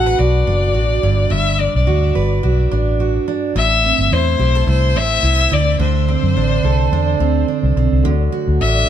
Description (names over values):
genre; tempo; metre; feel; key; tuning
acoustic pop; 107 BPM; 4/4; swing 55% on 16ths; unclear; A4 = 441 Hz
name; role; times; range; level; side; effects
rich violin; melody; 0.0-8.9 s; C5 to F#5; -19 LUFS; left 4 dB; tape echo
picked steel-string acoustic guitar; accompaniment; 0.0-8.9 s; G2 to B4; -19 LUFS; right 7 dB; none
vintage muted fingered electric bass; bass; 0.0-8.8 s; F#1 to F#2; -16 LUFS; left 1 dB; none
tonewheel organ; sustained chords; 8.0-8.9 s; D3 to F#4; -24 LUFS; left 1 dB; stopped rotary speaker
room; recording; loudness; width
little or no reverb; none; -13 LUFS; side -10 dB against mid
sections
0.0-8.0 A section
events
none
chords
0.0 Bm7; 1.0 Gmaj7; 3.6 Am7; 5.5 D7(no3); 8.0 D